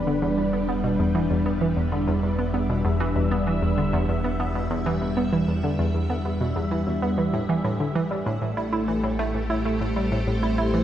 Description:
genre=ambient, sequencer-driven space music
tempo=97 BPM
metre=4/4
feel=straight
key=E minor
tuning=A4 = 440 Hz
part: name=string machine, full ensemble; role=sustained chords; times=0.0-10.8 s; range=G3 to E5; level=-26 LUFS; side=equal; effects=ensemble chorus
part: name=analog pluck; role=riff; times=0.0-10.8 s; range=E2 to E4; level=-25 LUFS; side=right 1 dB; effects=chorus, vintage 12-bit sampler grit, tape echo
part: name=fat analog bass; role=bass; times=0.0-10.8 s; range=E1 to A1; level=-29 LUFS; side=equal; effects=none
part: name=pulsing gated texture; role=texture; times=0.0-10.8 s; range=F#5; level=-47 LUFS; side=right 6 dB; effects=none
room=wet spring reverb, RT60 2.2 s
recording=echo-heavy mix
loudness=-22 LUFS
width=side -11 dB against mid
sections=0.0-10.8 A section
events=none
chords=0.0 Em7; 8.3 Am7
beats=0.22 | 0.84 1.46 2.08 2.70 | 3.31 3.93 4.55 5.17 | 5.79 6.41 7.03 7.64 | 8.26 8.88 9.50 10.12 | 10.74

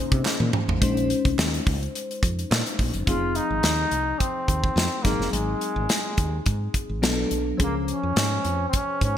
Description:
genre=polished 1980s jazz-funk pop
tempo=106 BPM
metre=4/4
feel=swing 54% on 16ths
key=Bb minor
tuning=A4 = 440 Hz
part: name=bell-like FM electric piano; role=accompaniment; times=0.0-9.2 s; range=F3 to C5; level=-29 LUFS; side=left 4 dB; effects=lush chorus
part: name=lush unison pad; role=sustained chords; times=0.0-0.8 s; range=Db3 to C5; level=-38 LUFS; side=equal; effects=none
part: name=woody fretless electric bass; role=bass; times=0.1-9.2 s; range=F1 to C3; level=-27 LUFS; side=equal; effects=none
part: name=modern studio drum kit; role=drums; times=0.1-9.2 s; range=hi-hat, kick drum, snare drum, toms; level=-24 LUFS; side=equal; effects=gated reverb
part: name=group handclap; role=percussion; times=0.3-2.7 s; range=none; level=-35 LUFS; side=right 4 dB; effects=none
part: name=breathy flugelhorn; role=melody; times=3.1-9.2 s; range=Ab3 to F4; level=-27 LUFS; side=equal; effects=none
room=moderate lush hall reverb, RT60 1.6 s, small room ambience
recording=bright 1980s-style digital production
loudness=-22 LUFS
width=side -10 dB against mid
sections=0.8-3.1 A section; 3.1-9.2 B section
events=drum fill 0.3-0.8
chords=0.0 Bbm11; 3.1 Fm7; 5.1 Ab7; 7.0 Bm7; 7.6 Dbmaj7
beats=0.25 | 0.82 1.38 1.95 2.51 | 3.08 3.64 4.21 4.78 | 5.34 5.91 6.47 7.04 | 7.60 8.17 8.74

